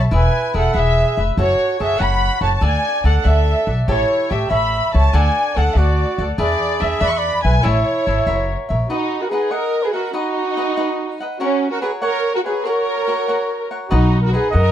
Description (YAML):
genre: mexican folk, mariachi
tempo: 96 BPM (dotted quarters)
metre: 6/8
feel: straight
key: A major, B major from 8.9 s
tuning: A4 = 440 Hz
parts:
  - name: dark studio violin section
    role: melody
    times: 0.0-14.7 s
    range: C#4 to C#6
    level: -20 LUFS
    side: equal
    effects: slapback echo
  - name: mellow trumpet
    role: second line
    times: 0.0-14.7 s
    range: E4 to F#5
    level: -24 LUFS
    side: right 4 dB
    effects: none
  - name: cavaquinho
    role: accompaniment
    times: 0.0-14.7 s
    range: D4 to F#5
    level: -24 LUFS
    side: left 2 dB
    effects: none
  - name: upright bass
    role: bass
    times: 0.0-8.8, 13.9-14.7 s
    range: E1 to F#2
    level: -17 LUFS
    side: equal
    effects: none
room: little or no reverb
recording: dry, close 1970s-style studio recording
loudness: -15 LUFS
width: side -10 dB against mid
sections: 0.0-8.9 A section; 8.9-14.7 B section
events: none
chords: 0.1 E; 1.4 F#m; 2.6 D; 3.9 A7; 5.1 D; 6.4 E7; 7.6 A; 8.3 F#7; 8.9 B; 11.4 F#; 13.9 B